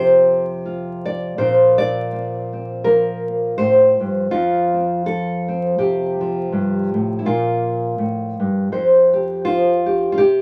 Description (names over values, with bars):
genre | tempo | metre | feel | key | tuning
folk, solo fingerstyle acoustic guitar | 82 BPM | 4/4 | swing 56% on 8ths | F major | A4 = 441 Hz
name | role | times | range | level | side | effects
nylon-string guitar | solo | 0.0-10.4 s | F2 to D5 | -18 LUFS | equal | none
room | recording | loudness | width
wet small room reverb, RT60 0.5 s | vinyl crackle | -18 LUFS | mono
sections
0.0-10.2 A section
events
none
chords
0.0 F; 1.4 Bbadd9; 4.3 F; 7.2 Bb5; 8.7 Fsus2